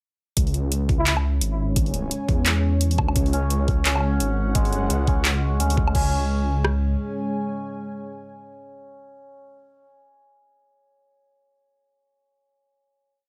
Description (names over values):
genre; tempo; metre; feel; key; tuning
half-time drum and bass; 172 BPM; 4/4; swing 58% on 16ths, half-time; unclear; A4 = 440 Hz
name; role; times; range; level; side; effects
dark analog pad; sustained chords; 1.1-9.5 s; G#3 to G#5; -31 LUFS; equal; chorus, vintage 12-bit sampler grit, sidechain pumping
dark detuned saw bass; bass; 0.4-7.0 s; G#1 to E2; -25 LUFS; equal; none
drum and bass drum kit; drums; 0.4-6.7 s; kick drum, rim click; -25 LUFS; equal; overdrive
drum and bass drum kit; drums; 0.4-6.0 s; crash cymbal, handclaps, hi-hat, woodblock; -28 LUFS; equal; overdrive
trumpet with bucket mute; melody; 1.0-1.1 s; E4; -32 LUFS; equal; vintage 12-bit sampler grit, digital delay
santur; arpeggios; 3.3-9.8 s; G#3 to C#4; -34 LUFS; equal; digital delay
room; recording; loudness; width
light reverb; none; -22 LUFS; mono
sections
0.4-5.9 drop; 5.9-8.7 final chord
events
drop 0.4-5.9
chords
0.4 C#5